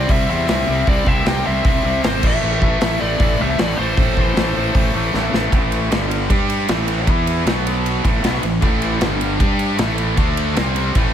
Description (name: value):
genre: hard rock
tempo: 154 BPM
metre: 4/4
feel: straight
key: A minor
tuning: A4 = 443 Hz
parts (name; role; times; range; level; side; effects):
- biting lead guitar; melody; 0.0-5.1 s; C5 to G5; -22 LUFS; left 1 dB; overdrive, slapback echo, plate reverb
- heavy high-gain guitar; riff; 0.0-11.1 s; G2 to G4; -24 LUFS; left 15 dB; distortion
- scooped high-gain guitar; riff; 0.0-5.3, 8.6-11.1 s; G2 to G4; -26 LUFS; equal; distortion
- tight distorted guitar; riff; 0.0-11.1 s; G2 to G4; -24 LUFS; right 12 dB; distortion
- fuzz fingered electric bass; bass; 0.0-11.1 s; G1 to G2; -22 LUFS; equal; overdrive
- big rock drum kit; drums; 0.1-11.1 s; crash cymbal, hi-hat, kick drum, ride cymbal, snare drum; -19 LUFS; equal; none
room: light reverb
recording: none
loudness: -15 LUFS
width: side -9 dB against mid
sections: 0.0-5.5 A section; 5.5-11.1 B section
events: drum fill 5.1-5.5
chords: 0.0 C; 2.2 Am; 5.5 A5; 5.9 G5; 6.7 A5; 7.1 E5; 7.5 B5; 8.1 A5; 9.0 G5; 9.8 A5; 10.2 D5; 10.6 C5